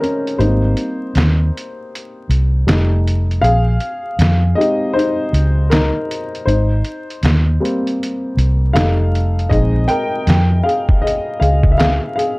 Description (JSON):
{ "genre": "lo-fi hip hop", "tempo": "79 BPM", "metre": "4/4", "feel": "swing 62% on 16ths", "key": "unclear", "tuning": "A4 = 440 Hz", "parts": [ { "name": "dark upright piano", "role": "accompaniment", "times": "0.0-12.4 s", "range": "Eb3 to G5", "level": "-18 LUFS", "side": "left 1 dB", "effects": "cassette tape, low-pass filter" }, { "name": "trip hop sampler-style drum kit", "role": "drums", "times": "0.0-12.4 s", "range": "handclaps, hi-hat, kick drum, snare drum", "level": "-18 LUFS", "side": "equal", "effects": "none" }, { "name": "vintage muted fingered electric bass", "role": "bass", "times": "0.4-12.0 s", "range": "F1 to F2", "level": "-14 LUFS", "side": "equal", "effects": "none" } ], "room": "light reverb", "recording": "dark, warm production, vinyl crackle", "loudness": "-13 LUFS", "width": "side -24 dB against mid", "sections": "0.0-12.4 A section", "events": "break 0.0-9.5; upright piano solo 0.0-12.4; kick muted 8.0-9.5", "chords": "0.4 Abmaj7; 2.7 F7; 3.4 Bb7sus4; 6.5 Abmaj7; 8.7 F7; 9.5 Bb7sus4", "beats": "| 0.39 1.15 1.91 2.67 | 3.43 4.19 4.95 5.71 | 6.47 7.23 7.99 8.75 | 9.51 10.27 11.03 11.79" }